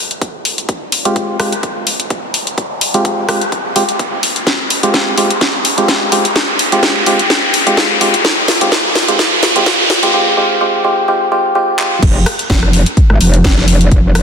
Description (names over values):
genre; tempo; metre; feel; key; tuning
bass house; 127 BPM; 4/4; swing 55% on 16ths; F minor; A4 = 440 Hz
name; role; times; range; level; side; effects
riser; sound effects; 0.0-10.1 s; none; -17 LUFS; equal; none
garage drum kit; drums; 0.1-14.2 s; crash cymbal, handclaps, hi-hat, rim click, snare drum; -14 LUFS; left 1 dB; studio reverb, soft clipping on snare
electronic kick drum; drums; 0.2-14.0 s; none; -13 LUFS; equal; high-pass filter on kick, studio reverb
percussive organ stab; stabs; 1.1-12.0 s; Ab3 to G4; -15 LUFS; right 1 dB; chorus, sidechain pumping, tape echo
metallic wobble bass; bass; 12.0-14.2 s; F1 to Ab1; -11 LUFS; equal; chorus, overdrive, sidechain pumping
room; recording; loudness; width
moderate lush hall reverb, RT60 2.1 s; dense, heavily limited modern master, high-pass filter; -10 LUFS; side -6 dB against mid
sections
0.0-12.0 A section; 12.0-14.2 B section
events
build-up 0.0-12.0; riser 0.0-10.1; drum fill 4.5-10.1, 11.8; drop 12.0-14.2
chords
0.0 Fmadd9; 12.0 N.C.